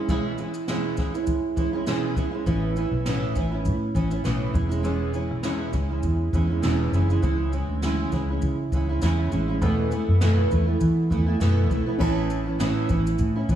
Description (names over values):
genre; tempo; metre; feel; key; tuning
acoustic pop; 101 BPM; 4/4; swing 55% on 16ths; A major; A4 = 440 Hz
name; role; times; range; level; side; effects
nylon-string guitar; accompaniment; 0.0-13.6 s; E2 to E4; -25 LUFS; right 2 dB; lush chorus
jazz brush drum kit; drums; 0.1-13.6 s; crash cymbal, kick drum, shaker, snare drum; -29 LUFS; equal; none
vintage muted fingered electric bass; bass; 2.5-13.6 s; E1 to E3; -24 LUFS; equal; none
dark upright piano; accompaniment; 12.0-13.6 s; C#4 to A5; -34 LUFS; left 3 dB; wide subtle chorus
room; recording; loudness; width
light reverb, small room ambience; none; -21 LUFS; side -10 dB against mid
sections
0.0-12.0 A section; 12.0-13.6 B section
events
none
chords
0.1 E6/B; 2.5 Aadd9; 4.5 E6; 7.2 C#m; 9.6 Esus4; 12.0 Aadd9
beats
| 0.08 0.68 1.27 1.87 | 2.46 3.06 3.65 4.25 | 4.85 5.44 6.04 6.63 | 7.23 7.83 8.42 9.02 | 9.62 10.21 10.81 11.40 | 12.00 12.60 13.19